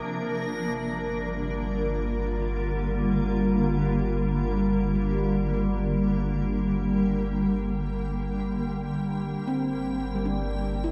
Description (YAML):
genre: ambient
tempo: free time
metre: none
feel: none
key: unclear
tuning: A4 = 440 Hz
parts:
  - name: granular cloud pad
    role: sustained chords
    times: 0.0-10.9 s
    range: D3 to G5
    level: -28 LUFS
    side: equal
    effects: built-in reverb
  - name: warm sub bass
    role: bass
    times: 0.1-10.9 s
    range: G1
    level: -34 LUFS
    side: equal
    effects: none
  - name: handpan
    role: arpeggios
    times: 0.9-10.9 s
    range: G3 to G4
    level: -37 LUFS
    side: equal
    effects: delay
room: wet huge ambient reverb, RT60 8.4 s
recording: none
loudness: -27 LUFS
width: mono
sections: 0.1-10.9 A section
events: fade-in on handpan 0.1-10.9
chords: 0.1 Gm7; 9.4 C7/G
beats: free time